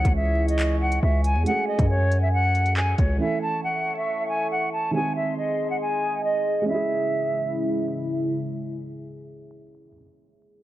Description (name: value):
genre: hip hop, drill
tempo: 138 BPM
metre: 4/4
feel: half-time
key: C# harmonic minor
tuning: A4 = 440 Hz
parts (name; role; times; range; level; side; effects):
- silver concert flute; melody; 0.0-7.9 s; C#5 to A5; -26 LUFS; right 1 dB; low-pass filter, ping-pong delay
- felt-muted upright piano; accompaniment; 0.0-10.6 s; D#3 to A4; -31 LUFS; right 2 dB; low-pass filter
- dark analog pad; sustained chords; 0.2-9.9 s; C#3 to C#6; -30 LUFS; equal; chorus, phaser
- distorted 808-style bass; bass; 0.0-3.2 s; C#2 to F#2; -22 LUFS; equal; distortion
- drill drum kit; drums; 0.0-3.1 s; handclaps, hi-hat, kick drum; -26 LUFS; equal; none
room: light reverb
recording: dark, warm production, vinyl crackle, low-pass filter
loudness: -21 LUFS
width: side -14 dB against mid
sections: 0.0-6.7 A section; 6.7-10.2 B section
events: none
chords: 0.0 C#m; 1.5 F#madd9; 3.2 A; 4.9 G#; 6.7 C#m